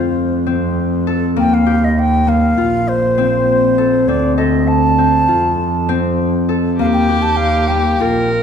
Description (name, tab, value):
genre	contemporary instrumental, chamber music in an uneven meter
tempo	199 BPM (eighths)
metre	9/8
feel	straight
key	unclear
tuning	A4 = 439 Hz
part	bright baroque flute	melody	0.0-8.3 s	C5 to A5	-17 LUFS	equal	none
part	concert harp	arpeggios	0.0-8.4 s	A3 to A4	-16 LUFS	left 4 dB	none
part	clear double bass	bass	0.0-8.4 s	Bb1 to F2	-19 LUFS	right 4 dB	none
part	rich viola	second line	6.8-8.4 s	G4 to Bb4	-19 LUFS	equal	none
room	wet recital hall reverb, RT60 1.8 s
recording	minimal, uncompressed stereo recording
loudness	-12 LUFS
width	side -7 dB against mid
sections	0.0-8.4 A section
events	none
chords	0.0 F; 1.4 Eb; 2.6 Bbsus2; 4.1 D5; 5.3 F; 6.8 Eb